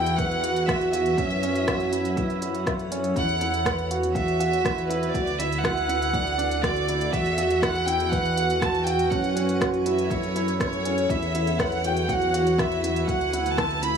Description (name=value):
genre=piano and strings electronica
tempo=121 BPM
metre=4/4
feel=straight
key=unclear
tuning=A4 = 440 Hz
part: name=warm chamber violin section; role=melody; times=0.0-14.0 s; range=B4 to B5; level=-27 LUFS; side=right 1 dB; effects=digital delay
part: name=granular cloud pad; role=sustained chords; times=0.0-14.0 s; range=F#3 to F#5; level=-32 LUFS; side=equal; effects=built-in reverb
part: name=felt-muted upright piano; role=riff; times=0.0-14.0 s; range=C#4 to E5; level=-26 LUFS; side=right 2 dB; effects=digital delay
part: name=dark detuned saw bass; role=bass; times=0.0-14.0 s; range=D2 to F#2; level=-29 LUFS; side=equal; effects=sidechain pumping
part: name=deep house drum kit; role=drums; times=0.1-14.0 s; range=hi-hat, rim click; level=-31 LUFS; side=equal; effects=none
part: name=electronic kick drum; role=drums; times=0.2-13.7 s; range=none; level=-31 LUFS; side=equal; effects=none
room=light reverb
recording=small room ambience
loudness=-22 LUFS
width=side -7 dB against mid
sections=0.0-14.0 A section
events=none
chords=0.0 Esus2; 1.2 F#m7; 3.2 Esus2; 5.1 Dadd9; 7.1 Esus2; 9.1 F#m7; 11.1 Esus2; 13.1 Dadd9